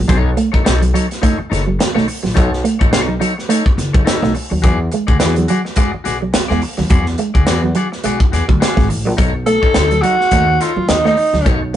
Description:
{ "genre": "funk", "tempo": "106 BPM", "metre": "4/4", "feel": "swing 56% on 16ths", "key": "B mixolydian", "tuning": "A4 = 441 Hz", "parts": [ { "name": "electric guitar with an envelope filter", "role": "riff", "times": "0.0-11.8 s", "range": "F#3 to A3", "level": "-19 LUFS", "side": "right 4 dB", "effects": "none" }, { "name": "upright bass", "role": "bass", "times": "0.0-11.8 s", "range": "F#1 to F#2", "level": "-18 LUFS", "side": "equal", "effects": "none" }, { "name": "clean electric guitar", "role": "accompaniment", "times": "0.1-11.8 s", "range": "D#4 to D5", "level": "-22 LUFS", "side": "left 5 dB", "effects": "none" }, { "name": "tight funk drum kit", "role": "drums", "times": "0.1-11.8 s", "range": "hi-hat, kick drum, snare drum", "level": "-16 LUFS", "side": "equal", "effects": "none" }, { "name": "raspy alto saxophone", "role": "melody", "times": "9.5-11.6 s", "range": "D#4 to A4", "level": "-14 LUFS", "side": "right 1 dB", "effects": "none" } ], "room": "light reverb", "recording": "rough rehearsal-room recording, nothing above 10.4 kHz", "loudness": "-12 LUFS", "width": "side -11 dB against mid", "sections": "0.0-9.2 A section; 9.2-11.8 B section", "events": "alto saxophone solo 9.2-11.8", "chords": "0.1 B9; 4.6 E9; 9.2 B9", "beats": "| 0.09 0.66 1.23 1.79 | 2.36 2.93 3.50 4.07 | 4.63 5.20 5.77 6.34 | 6.91 7.47 8.04 8.61 | 9.18 9.75 10.32 10.89 | 11.46" }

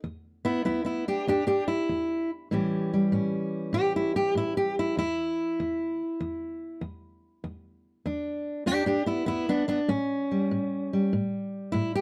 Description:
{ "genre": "acoustic country blues, solo or duo", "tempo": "98 BPM", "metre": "4/4", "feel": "swing 67% on 8ths", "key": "unclear", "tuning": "A4 = 440 Hz", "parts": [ { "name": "fingerpicked steel-string acoustic guitar", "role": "solo", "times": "0.0-12.0 s", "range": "E2 to G4", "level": "-28 LUFS", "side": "equal", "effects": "none" } ], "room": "light reverb", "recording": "close, detailed microphones", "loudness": "-28 LUFS", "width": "mono", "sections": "0.0-12.0 A section", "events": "steel-string acoustic guitar solo 0.0-12.0", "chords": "0.0 E5; 2.5 A7; 5.0 E5; 9.9 A7", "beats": "| 0.04 0.65 1.27 1.89 | 2.51 3.12 3.74 4.36 | 4.97 5.59 6.21 6.82 | 7.43 8.05 8.66 9.28 | 9.89 10.50 11.12 11.73" }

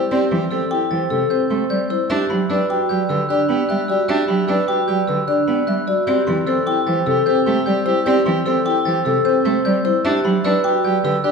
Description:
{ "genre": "classical, minimalist pattern music", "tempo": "151 BPM", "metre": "5/4", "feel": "straight", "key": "E minor", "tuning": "A4 = 441 Hz", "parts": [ { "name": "marimba with soft mallets", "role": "melody", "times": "0.0-11.3 s", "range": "A4 to G5", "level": "-21 LUFS", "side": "left 8 dB", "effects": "none" }, { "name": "warm soprano saxophone", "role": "second line", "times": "0.0-11.3 s", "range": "G4", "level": "-27 LUFS", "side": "right 4 dB", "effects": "none" }, { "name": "glockenspiel with soft plastic mallets", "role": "arpeggios", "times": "0.0-11.3 s", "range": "B5 to A6", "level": "-26 LUFS", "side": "right 2 dB", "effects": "none" }, { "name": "vibraphone with medium mallets", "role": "arpeggios", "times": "0.0-11.3 s", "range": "C4 to D5", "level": "-22 LUFS", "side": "right 4 dB", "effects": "none" }, { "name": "warm cello", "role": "accompaniment", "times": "0.1-11.2 s", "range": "C3 to D4", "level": "-22 LUFS", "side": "right 2 dB", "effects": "none" } ], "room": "wet large studio reverb, RT60 1.4 s", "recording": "heard from further back in the room", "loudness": "-16 LUFS", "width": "side -5 dB against mid", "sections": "0.0-11.3 A section", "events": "none", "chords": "0.0 Am7; 2.1 Em7; 6.1 Am7; 10.0 Em7", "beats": "| 0.11 0.51 0.91 1.30 1.70 | 2.10 2.50 2.90 3.29 3.69 | 4.09 4.48 4.88 5.28 5.68 | 6.07 6.47 6.87 7.27 7.66 | 8.06 8.46 8.86 9.25 9.65 | 10.05 10.44 10.84 11.24" }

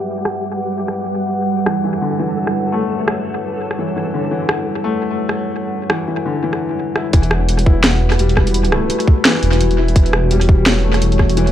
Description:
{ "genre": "half-time drum and bass", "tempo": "170 BPM", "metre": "4/4", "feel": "swing 57% on 16ths, half-time", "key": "E dorian", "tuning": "A4 = 440 Hz", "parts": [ { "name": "deep dark ambient pad", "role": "sustained chords", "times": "0.0-11.5 s", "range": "G3 to F#5", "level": "-21 LUFS", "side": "right 1 dB", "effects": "chorus, built-in reverb, vintage 12-bit sampler grit, sidechain pumping" }, { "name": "flickering grainy texture", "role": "texture", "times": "0.0-7.2 s", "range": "G3 to A4", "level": "-28 LUFS", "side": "equal", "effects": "built-in reverb" }, { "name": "drum and bass drum kit", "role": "drums", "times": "0.3-11.5 s", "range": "hi-hat, rim click, snare drum", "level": "-18 LUFS", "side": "equal", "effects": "studio ambience, tape echo" }, { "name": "felt-muted upright piano", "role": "arpeggios", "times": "1.7-11.5 s", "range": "D3 to E4", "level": "-21 LUFS", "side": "left 4 dB", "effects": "tape echo" }, { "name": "dark detuned saw bass", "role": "bass", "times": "7.1-11.5 s", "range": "E1", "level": "-16 LUFS", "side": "equal", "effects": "tube saturation" }, { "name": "electronic kick drum", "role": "drums", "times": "7.1-11.3 s", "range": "none", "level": "-11 LUFS", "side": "equal", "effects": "studio ambience" } ], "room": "light reverb", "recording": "echo-heavy mix, low-pass filter", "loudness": "-14 LUFS", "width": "side -11 dB against mid", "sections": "0.0-7.1 A section; 7.1-11.5 B section", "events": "filter sweep 0.0-7.1; drop 7.1-11.5", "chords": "0.0 Emadd9", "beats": "| 0.08 0.43 0.78 1.14 | 1.49 1.84 2.20 2.55 | 2.90 3.25 3.61 3.96 | 4.31 4.67 5.02 5.37 | 5.72 6.08 6.43 6.78 | 7.14 7.49 7.84 8.20 | 8.55 8.90 9.25 9.61 | 9.96 10.31 10.67 11.02 | 11.37" }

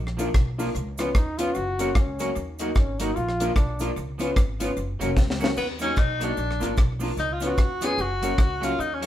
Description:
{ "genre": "ska", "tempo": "150 BPM", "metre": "4/4", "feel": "swing 60% on 8ths", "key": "Eb minor", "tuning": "A4 = 440 Hz", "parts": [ { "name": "upright bass", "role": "bass", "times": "0.0-9.1 s", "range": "F1 to Eb2", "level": "-31 LUFS", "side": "equal", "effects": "none" }, { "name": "deep reggae drum kit", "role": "drums", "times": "0.1-9.1 s", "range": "crash cymbal, hi-hat, kick drum, rim click, snare drum", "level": "-24 LUFS", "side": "equal", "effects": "none" }, { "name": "electric guitar at the edge of break-up", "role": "accompaniment", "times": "0.2-9.1 s", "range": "F3 to Gb4", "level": "-33 LUFS", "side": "right 4 dB", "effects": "tape echo" }, { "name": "warm upright piano", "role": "stabs", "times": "0.2-9.1 s", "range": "Db4 to Cb5", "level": "-30 LUFS", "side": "left 2 dB", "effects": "none" }, { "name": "cabasa", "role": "percussion", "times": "0.2-9.1 s", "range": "none", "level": "-45 LUFS", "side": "right 5 dB", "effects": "none" }, { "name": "clear trombone", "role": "melody", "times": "1.2-3.9 s", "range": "Db4 to Gb4", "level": "-29 LUFS", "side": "left 1 dB", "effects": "none" }, { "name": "warm tenor saxophone", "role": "melody", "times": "5.6-9.1 s", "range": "Cb4 to Ab4", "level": "-27 LUFS", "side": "left 2 dB", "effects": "none" } ], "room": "moderate studio reverb, RT60 0.7 s", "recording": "band playing live in one room", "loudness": "-22 LUFS", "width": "side -12 dB against mid", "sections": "0.0-5.6 A section; 5.6-9.1 A section", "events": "trombone solo 0.0-5.6; drum fill 5.2-5.6; tenor saxophone solo 5.6-9.1", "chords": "0.0 Bb; 0.8 Db7; 1.6 Gb; 2.4 Ebm; 3.2 Bb; 4.0 Db7; 4.8 Gb; 5.6 Ebm; 6.4 Bb; 7.2 Db7; 8.0 Gb", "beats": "0.35 | 0.75 1.15 1.55 1.96 | 2.36 2.76 3.16 3.56 | 3.96 4.36 4.76 5.17 | 5.57 5.97 6.37 6.77 | 7.17 7.58 7.98 8.38 | 8.78" }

